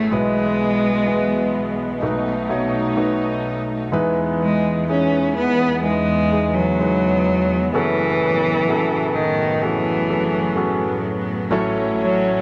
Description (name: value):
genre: pop ballad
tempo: 63 BPM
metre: 4/4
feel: straight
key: E major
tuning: A4 = 441 Hz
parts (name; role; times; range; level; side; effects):
- rich cello; melody; 0.0-12.4 s; D#3 to C#4; -22 LUFS; equal; cassette tape
- warm concert grand piano; accompaniment; 0.0-12.4 s; F#1 to F#5; -24 LUFS; equal; cassette tape
- clear symphonic string section; sustained chords; 0.0-12.4 s; E2 to D#4; -28 LUFS; equal; cassette tape
room: moderate spring reverb, RT60 1.6 s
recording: home recording on cassette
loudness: -20 LUFS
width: mono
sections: 0.0-12.4 A section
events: grand piano fill 2.0-3.9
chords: 0.1 E/B; 2.0 B7; 3.9 Emaj7; 7.7 F#madd9; 11.5 A6